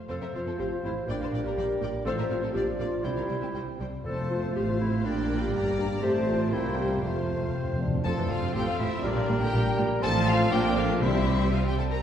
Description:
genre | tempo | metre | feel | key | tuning
quick classical-period movement for symphony orchestra | 121 BPM | 2/4 | rubato | F major | A4 = 440 Hz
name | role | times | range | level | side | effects
rich studio violin section | melody | 0.1-12.0 s | C5 to Bb5 | -36 LUFS | left 3 dB | none
clear chamber violin section | second line | 0.1-12.0 s | D4 to D5 | -36 LUFS | left 3 dB | none
concert flute | second line | 0.1-11.8 s | Bb4 to D6 | -37 LUFS | right 1 dB | none
warm clarinet | second line | 0.1-11.8 s | D4 to C5 | -33 LUFS | left 1 dB | none
mellow bassoon | accompaniment | 0.1-11.8 s | F3 to D4 | -36 LUFS | right 1 dB | none
rich studio viola section | accompaniment | 0.1-11.8 s | C3 to D4 | -35 LUFS | right 1 dB | none
mellow French horn section | sustained chords | 0.1-11.8 s | C4 to Bb4 | -37 LUFS | left 2 dB | none
rich studio cello section | bass | 0.1-11.8 s | F2 to C3 | -32 LUFS | right 2 dB | none
rich studio double bass section | bass | 0.1-11.8 s | F1 to C2 | -32 LUFS | right 1 dB | none
timpani | percussion | 4.0-4.5, 7.0-8.0, 11.0-11.7 s | F2 to C3 | -32 LUFS | left 1 dB | none
room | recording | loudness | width
wet concert hall reverb, RT60 2.2 s | heard from further back in the room | -25 LUFS | side -9 dB against mid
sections
0.1-8.1 A section; 8.1-12.0 A section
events
timpani fill 7.0-8.1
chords
0.1 F; 1.1 Gm/Bb; 2.1 F/A; 2.5 Bb; 3.0 C; 4.0 F; 4.5 F/A; 5.0 Gm/Bb; 6.0 F/A; 6.5 C7; 7.0 F; 9.0 Gm/Bb; 10.0 F/A; 10.5 Bb; 11.0 C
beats
| 0.10 0.59 | 1.09 1.57 | 2.06 2.55 | 3.04 3.54 | 4.05 4.55 | 5.04 5.53 | 6.02 6.51 | 7.03 7.54 | 8.05 8.55 | 9.04 9.54 | 10.03 10.52 | 11.02 11.53

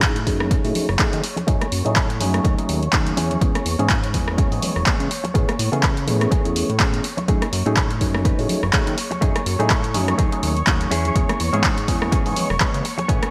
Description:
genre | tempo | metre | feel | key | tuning
filtered disco house | 124 BPM | 4/4 | swing 56% on 16ths | F# dorian | A4 = 441 Hz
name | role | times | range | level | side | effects
overdriven tine electric piano | accompaniment | 0.0-13.2 s | E3 to G#5 | -28 LUFS | equal | phaser, sidechain pumping, low-pass filter
warm studio violin section | sustained chords | 0.0-13.3 s | C#5 to C#6 | -33 LUFS | equal | sidechain pumping, low-pass filter
direct-recorded clean electric guitar | riff | 0.0-13.3 s | A3 to B4 | -31 LUFS | equal | sidechain pumping, low-pass filter
fat analog bass | bass | 0.0-13.2 s | E1 to D#3 | -26 LUFS | equal | sidechain pumping, low-pass filter
electronic kick drum | drums | 0.0-13.2 s | none | -23 LUFS | equal | none
punchy analog drum machine | drums | 0.0-13.3 s | handclaps, hi-hat, rim click | -26 LUFS | equal | sidechain pumping on hats
maracas and congas | percussion | 0.0-13.3 s | none | -34 LUFS | equal | none
room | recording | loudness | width
moderate lush hall reverb, RT60 1.8 s, digital ambience | bright 1980s-style digital production | -20 LUFS | mono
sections
0.0-13.3 A section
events
filter sweep 0.0-13.3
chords
0.0 F#m69; 3.2 E6; 5.3 Amaj9; 7.3 F#m69; 10.9 E6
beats
0.03 0.51 0.99 | 1.48 1.96 2.45 2.93 | 3.41 3.90 4.38 4.87 | 5.35 5.83 6.32 6.80 | 7.28 7.77 8.25 8.74 | 9.22 9.70 10.19 10.67 | 11.15 11.64 12.12 12.61 | 13.09

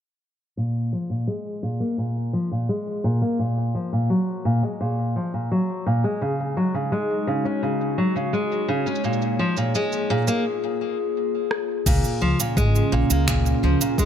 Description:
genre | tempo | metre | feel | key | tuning
folktronica | 85 BPM | 4/4 | straight | Db major | A4 = 439 Hz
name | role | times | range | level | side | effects
picked steel-string acoustic guitar | arpeggios | 0.6-14.1 s | Bb2 to Db4 | -22 LUFS | equal | low-pass filter, ping-pong delay
organic electronic drum kit | drums | 0.6-14.1 s | cabasa, crash cymbal, finger snaps, rim click | -28 LUFS | right 4 dB | none
warbly tape-like pad | sustained chords | 6.8-14.1 s | Db3 to Db5 | -26 LUFS | left 2 dB | chorus, built-in reverb
upright bass | bass | 11.9-13.7 s | Ab1 to Db2 | -21 LUFS | equal | none
electronic kick drum | drums | 11.9-14.1 s | none | -23 LUFS | equal | none
room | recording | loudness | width
light reverb, digital ambience | low-pass filter | -21 LUFS | side -9 dB against mid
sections
0.6-11.9 A section; 11.9-14.1 B section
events
filter sweep on steel-string acoustic guitar 0.6-11.9; filter sweep 0.6-11.9; break 10.5-11.9; drum fill 11.5-11.9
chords
0.6 Fmadd11/Bb (rootless); 3.4 Gb; 6.2 Ab7sus4; 9.0 Bbm7; 11.9 Db6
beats
| 0.57 1.28 1.98 2.69 | 3.40 4.10 4.81 5.51 | 6.22 6.92 7.63 8.34 | 9.04 9.75 10.45 11.16 | 11.87 12.57 13.28 13.98

